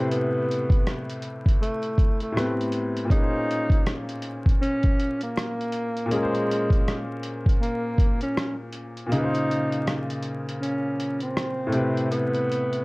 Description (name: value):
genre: lo-fi hip hop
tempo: 80 BPM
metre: 4/4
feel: swing 63% on 16ths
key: unclear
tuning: A4 = 440 Hz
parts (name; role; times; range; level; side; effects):
- breathy tenor saxophone; melody; 0.0-12.8 s; Ab3 to Eb4; -28 LUFS; equal; low-pass filter
- bright upright piano; accompaniment; 0.0-12.8 s; A2 to C5; -28 LUFS; left 1 dB; cassette tape, low-pass filter
- lo-fi sampler-style drum kit; drums; 0.1-12.8 s; hi-hat, kick drum, rim click; -23 LUFS; equal; vintage 12-bit sampler grit
room: light reverb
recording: dark, warm production, vinyl crackle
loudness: -22 LUFS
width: side -25 dB against mid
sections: 0.0-9.1 A section; 9.1-12.8 B section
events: kick muted 9.1-12.8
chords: 0.0 Am7; 3.1 Bbm7; 11.7 Am7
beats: | 0.10 0.85 1.60 2.35 | 3.10 3.85 4.60 5.35 | 6.10 6.85 7.60 8.35 | 9.10 9.85 10.60 11.35 | 12.10